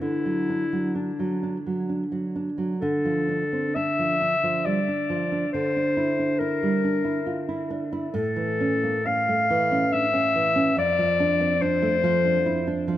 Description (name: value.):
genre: romantic duo for clarinet and classical guitar.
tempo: 62-72 BPM.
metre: 3/4.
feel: rubato.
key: D minor.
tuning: A4 = 439 Hz.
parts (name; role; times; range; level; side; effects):
warm clarinet; melody; 0.0-12.9 s; D4 to F5; -24 LUFS; left 3 dB; tape echo.
nylon-string guitar; accompaniment; 0.0-13.0 s; F2 to F4; -25 LUFS; right 2 dB; none.
room: light reverb.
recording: close, detailed microphones.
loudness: -22 LUFS.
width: side -13 dB against mid.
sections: 0.0-2.8 A section; 2.8-13.0 B section.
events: none.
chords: 0.0 D; 2.8 Dm; 5.5 Edim/D; 8.1 A; 10.8 Dm/F.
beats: | 0.01 0.95 1.88 | 2.80 3.74 4.64 | 5.52 6.39 7.25 | 8.13 9.05 9.91 | 10.77 11.61 12.45.